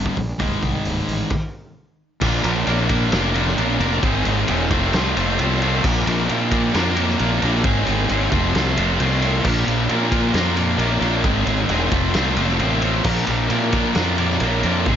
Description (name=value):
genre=quiet-loud alternative rock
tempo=133 BPM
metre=4/4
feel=straight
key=unclear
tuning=A4 = 439 Hz
part: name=thick fuzz guitar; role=riff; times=0.0-15.0 s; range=C2 to Bb4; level=-20 LUFS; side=equal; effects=distortion
part: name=fuzz fingered electric bass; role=bass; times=0.0-15.0 s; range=C1 to Bb2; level=-22 LUFS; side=equal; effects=overdrive
part: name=loose indie drum kit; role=drums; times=0.1-15.0 s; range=crash cymbal, hi-hat, kick drum, ride cymbal, snare drum, toms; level=-23 LUFS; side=equal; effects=none
room=small room ambience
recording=nothing above 7.5 kHz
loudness=-17 LUFS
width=side -9 dB against mid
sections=0.0-2.2 A section; 2.2-15.0 B section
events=stop 1.3-2.2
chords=0.4 Ab/C; 2.2 Bb; 4.0 Ab; 4.7 F; 5.8 Bb; 7.6 Ab; 8.3 F; 9.4 Bb; 11.2 Ab; 11.9 F; 13.1 Bb